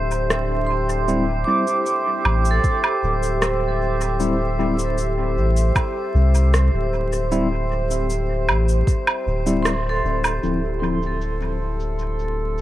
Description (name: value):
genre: ambient dub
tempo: 77 BPM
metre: 4/4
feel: straight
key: unclear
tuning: A4 = 440 Hz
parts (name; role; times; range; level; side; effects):
- deep dark ambient pad; sustained chords; 0.0-12.6 s; D4 to E5; -26 LUFS; equal; chorus, built-in reverb
- soft dub sub bass; bass; 0.0-12.6 s; D1 to C2; -21 LUFS; equal; none
- drifting glass-harmonics texture; texture; 0.0-12.6 s; A4 to C5; -30 LUFS; right 2 dB; chorus, built-in reverb
- electronic cabasa, rim click and woodblock; drums; 0.1-12.6 s; none; -25 LUFS; right 1 dB; low-pass filter on perc, low-pass filter on snare, low-pass filter on room, dub echo
- vibraphone with hard mallets; arpeggios; 0.7-11.5 s; A4 to D6; -27 LUFS; right 3 dB; tape echo
- tine electric piano; stabs; 1.1-11.0 s; F3 to E4; -26 LUFS; left 2 dB; slow stereo tremolo, low-pass filter, dub echo
- electronic kick drum; drums; 2.6-9.0 s; none; -20 LUFS; equal; none
room: light reverb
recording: vinyl crackle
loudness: -18 LUFS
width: side -14 dB against mid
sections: 0.0-10.4 A section; 10.4-12.6 B section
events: band accent 9.7-10.0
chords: 0.0 C/D; 10.4 Dm9